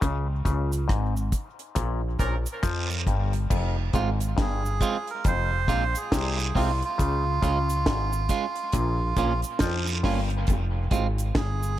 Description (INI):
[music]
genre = dub reggae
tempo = 69 BPM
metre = 4/4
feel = swing 60% on 16ths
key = F minor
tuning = A4 = 440 Hz
[part]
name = clav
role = riff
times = 0.0-10.3 s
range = F2 to F3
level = -34 LUFS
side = left 6 dB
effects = dub echo
[part]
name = woody fretless electric bass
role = bass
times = 0.0-11.8 s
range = F1 to F2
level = -26 LUFS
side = equal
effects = lush chorus
[part]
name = deep reggae drum kit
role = drums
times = 0.0-11.6 s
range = crash cymbal, hi-hat, kick drum, rim click, snare drum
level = -27 LUFS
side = equal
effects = none
[part]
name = cabasa and guiro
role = percussion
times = 0.0-11.8 s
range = none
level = -37 LUFS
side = right 5 dB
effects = dub echo
[part]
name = clear horn section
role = second line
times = 2.2-2.4 s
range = F3 to Bb4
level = -37 LUFS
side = right 1 dB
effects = dub echo
[part]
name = clean electric guitar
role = accompaniment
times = 3.9-11.1 s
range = Ab3 to F4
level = -32 LUFS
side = right 6 dB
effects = dub echo
[part]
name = melodica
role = melody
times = 4.4-11.8 s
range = F4 to C5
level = -30 LUFS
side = right 4 dB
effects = dub echo
[sound]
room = light reverb, small room ambience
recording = none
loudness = -23 LUFS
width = side -13 dB against mid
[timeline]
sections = 0.0-3.5 A section; 3.5-11.8 B section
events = break 0.0-3.5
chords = 0.0 Db5; 1.8 Bb5; 3.5 Fm; 7.0 Db; 8.7 Bbm; 10.5 Fm